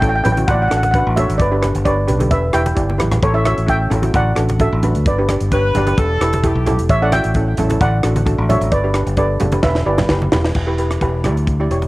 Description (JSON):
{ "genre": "calypso", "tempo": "131 BPM", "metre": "4/4", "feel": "straight", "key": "unclear", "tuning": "A4 = 439 Hz", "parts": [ { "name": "steel pan", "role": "melody", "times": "0.0-10.3 s", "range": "A4 to G5", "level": "-19 LUFS", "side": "right 1 dB", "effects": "cassette tape, tape echo" }, { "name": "steel pan", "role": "accompaniment", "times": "0.0-11.8 s", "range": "C#4 to D5", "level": "-21 LUFS", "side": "right 1 dB", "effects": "cassette tape" }, { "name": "fingered electric bass", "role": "bass", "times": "0.0-11.9 s", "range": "E1 to D2", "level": "-18 LUFS", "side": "equal", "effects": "none" }, { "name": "crisp fusion drum kit", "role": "drums", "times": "0.0-11.9 s", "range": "crash cymbal, hi-hat, kick drum, rim click, snare drum", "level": "-20 LUFS", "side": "equal", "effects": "cassette tape" }, { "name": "congas", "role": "percussion", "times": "0.3-11.9 s", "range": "none", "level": "-23 LUFS", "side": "right 1 dB", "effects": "none" }, { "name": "bright horn section", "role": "second line", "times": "5.5-6.8 s", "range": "G4 to B4", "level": "-20 LUFS", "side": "left 1 dB", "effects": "cassette tape" } ], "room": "light reverb, small room ambience", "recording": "home recording on cassette", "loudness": "-14 LUFS", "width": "side -19 dB against mid", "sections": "0.0-10.6 A section; 10.6-11.9 B section", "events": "drum fill 2.9-3.2, 9.6-10.6", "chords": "0.5 D/A; 1.4 G; 2.3 Em7; 3.2 A7; 4.1 Dadd9/A; 5.1 G; 6.0 Em; 6.9 A7; 7.8 D/A; 8.7 Gmaj7; 9.6 Em7", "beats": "0.02 0.48 0.94 | 1.39 1.85 2.31 2.77 | 3.23 3.69 4.14 4.60 | 5.06 5.52 5.97 6.43 | 6.89 7.35 7.80 8.26 | 8.72 9.18 9.63 10.09 | 10.55 11.01 11.47" }